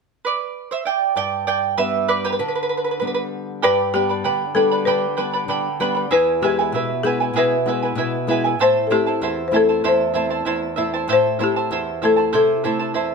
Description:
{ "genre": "andean folk, Andean ensemble", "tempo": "97 BPM", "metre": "2/4", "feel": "straight", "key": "unclear", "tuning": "A4 = 440 Hz", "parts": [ { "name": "charango", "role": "accompaniment", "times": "0.2-13.1 s", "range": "E4 to B5", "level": "-21 LUFS", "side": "right 6 dB", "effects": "none" }, { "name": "nylon-string guitar", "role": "accompaniment", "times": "1.2-13.1 s", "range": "E2 to E4", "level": "-26 LUFS", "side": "left 4 dB", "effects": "none" }, { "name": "folk marimba with medium hard mallets", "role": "melody", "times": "3.6-13.1 s", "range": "G4 to C5", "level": "-18 LUFS", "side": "left 4 dB", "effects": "none" } ], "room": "light reverb", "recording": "band playing live in one room", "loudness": "-17 LUFS", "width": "side -4 dB against mid", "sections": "0.0-1.2 A section; 1.2-3.6 B section; 3.6-13.1 C section", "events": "charango solo 1.2-3.6", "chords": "0.0 Bmadd11; 1.2 G; 6.1 E; 8.6 Am" }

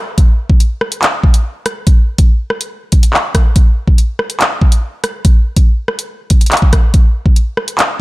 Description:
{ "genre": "hip hop", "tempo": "142 BPM", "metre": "4/4", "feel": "half-time", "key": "none", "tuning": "none", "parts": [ { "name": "drill drum kit", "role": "drums", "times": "0.2-7.9 s", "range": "handclaps, hi-hat, kick drum, rim click", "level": "-10 LUFS", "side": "equal", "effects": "none" } ], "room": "little or no reverb", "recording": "none", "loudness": "-10 LUFS", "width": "side -20 dB against mid", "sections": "0.2-8.0 A section", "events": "break 0.0", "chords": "none" }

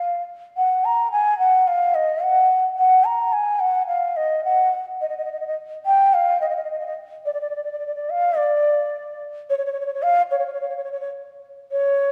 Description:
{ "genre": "calypso", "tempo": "107 BPM", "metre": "4/4", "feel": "straight", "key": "unclear", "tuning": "A4 = 440 Hz", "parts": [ { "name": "breathy mellow bansuri", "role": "solo", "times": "0.0-12.1 s", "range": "Db5 to Bb5", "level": "-21 LUFS", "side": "equal", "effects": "none" } ], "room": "wet scoring stage reverb, RT60 2.0 s", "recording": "none", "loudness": "-21 LUFS", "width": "mono", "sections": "0.0-9.5 A section; 9.5-12.1 B section", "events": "none", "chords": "none" }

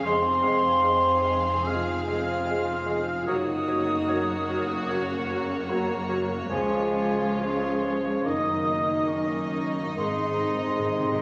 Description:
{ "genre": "classical", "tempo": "63-77 BPM", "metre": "4/4", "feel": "rubato", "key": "unclear", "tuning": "A4 = 440 Hz", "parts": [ { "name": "rich studio violin section", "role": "melody", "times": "0.0-11.2 s", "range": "Db5 to F5", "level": "-42 LUFS", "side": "equal", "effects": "none" }, { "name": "clear oboe", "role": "second line", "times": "0.0-11.2 s", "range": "Db5 to F5", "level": "-39 LUFS", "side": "equal", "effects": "none" }, { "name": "silver concert flute", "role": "second line", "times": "0.0-11.2 s", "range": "Ab5 to F6", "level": "-31 LUFS", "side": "equal", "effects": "none" }, { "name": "warm clarinet", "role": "second line", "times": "0.0-11.2 s", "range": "Ab4 to Bb4", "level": "-37 LUFS", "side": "equal", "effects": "none" }, { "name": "warm studio violin section", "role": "second line", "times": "0.0-11.2 s", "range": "Eb4 to Ab4", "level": "-39 LUFS", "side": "equal", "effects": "none" }, { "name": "rich studio viola section", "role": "accompaniment", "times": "0.0-11.2 s", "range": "Ab3 to C4", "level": "-40 LUFS", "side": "equal", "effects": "none" }, { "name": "warm French horn section", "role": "sustained chords", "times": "0.0-11.2 s", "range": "Ab3 to F4", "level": "-33 LUFS", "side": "equal", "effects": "none" }, { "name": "concert harp", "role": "arpeggios", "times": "0.0-11.2 s", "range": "F2 to Ab5", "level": "-41 LUFS", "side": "equal", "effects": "none" }, { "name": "clear studio double bass section", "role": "bass", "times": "0.0-11.2 s", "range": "F1 to Db2", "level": "-40 LUFS", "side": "equal", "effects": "none" }, { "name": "rich studio cello section", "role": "bass", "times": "0.0-11.2 s", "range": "Db2 to C3", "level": "-38 LUFS", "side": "equal", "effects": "none" }, { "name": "warm bassoon", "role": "accompaniment", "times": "0.1-11.2 s", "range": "Eb3 to Ab3", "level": "-34 LUFS", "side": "equal", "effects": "none" }, { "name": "timpani", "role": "percussion", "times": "10.0-11.2 s", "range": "Ab2", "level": "-42 LUFS", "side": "equal", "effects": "none" } ], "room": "wet recital hall reverb, RT60 1.6 s", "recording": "recorded on a phone in the room, club reverb, compression", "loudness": "-26 LUFS", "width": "mono", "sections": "0.0-11.2 A section", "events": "timpani fill 10.0-11.2", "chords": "0.0 Fm; 3.3 Gb; 6.5 Db; 8.3 Ebm/Gb; 10.0 Ab" }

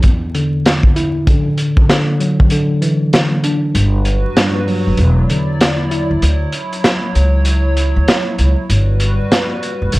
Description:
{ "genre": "hip hop, boom-bap hip-hop", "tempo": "97 BPM", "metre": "4/4", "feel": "swing 62% on 16ths", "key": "D major", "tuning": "A4 = 439 Hz", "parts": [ { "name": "tine electric piano", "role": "accompaniment", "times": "0.0-6.2 s", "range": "E2 to E4", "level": "-16 LUFS", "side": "equal", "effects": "medium stereo tremolo, high-pass filter, low-pass filter" }, { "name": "crunchy breakbeat drum kit", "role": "drums", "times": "0.0-10.0 s", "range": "hi-hat, kick drum, snare drum", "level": "-15 LUFS", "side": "equal", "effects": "vintage 12-bit sampler grit" }, { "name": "hollow soft pad", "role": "sustained chords", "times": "3.7-10.0 s", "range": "F#3 to D5", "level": "-21 LUFS", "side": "right 1 dB", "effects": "chorus, high-pass filter, low-pass filter" }, { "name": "upright bass", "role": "bass", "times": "3.7-10.0 s", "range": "E1 to Eb2", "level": "-13 LUFS", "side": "equal", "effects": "none" } ], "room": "little or no reverb", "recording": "dark, warm production, vinyl crackle", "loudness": "-12 LUFS", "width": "side -20 dB against mid", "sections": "0.0-3.7 A section; 3.7-10.0 A section", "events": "break 0.0-3.7; kick muted 3.7-10.0", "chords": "0.0 Dsus2/E; 1.3 Dadd9; 3.7 Gmaj7; 5.0 Dadd9/E; 6.2 Dmaj9; 8.7 Gmaj7" }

